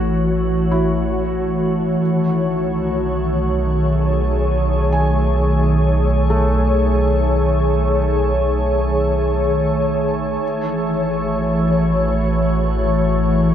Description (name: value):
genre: ambient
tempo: free time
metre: none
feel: none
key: unclear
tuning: A4 = 440 Hz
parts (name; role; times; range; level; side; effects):
- glassy FM pad; sustained chords; 0.0-13.5 s; D#3 to C#5; -18 LUFS; left 1 dB; ensemble chorus, built-in reverb
- felt-muted upright piano; arpeggios; 0.0-13.5 s; A3 to G#5; -30 LUFS; equal; tape echo
- warm sub bass; bass; 0.0-13.5 s; A1 to B1; -20 LUFS; right 1 dB; none
- organ-like drone; drone; 0.0-13.5 s; A3; -27 LUFS; right 1 dB; ensemble chorus, built-in reverb
room: wet huge ambient reverb, RT60 8.0 s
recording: dark, warm production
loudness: -16 LUFS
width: side -9 dB against mid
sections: 0.0-13.5 A section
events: fade-in on felt piano 0.0-13.5; fade-in on synth drone 0.0-13.5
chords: 0.0 A6; 2.0 B13; 10.4 A6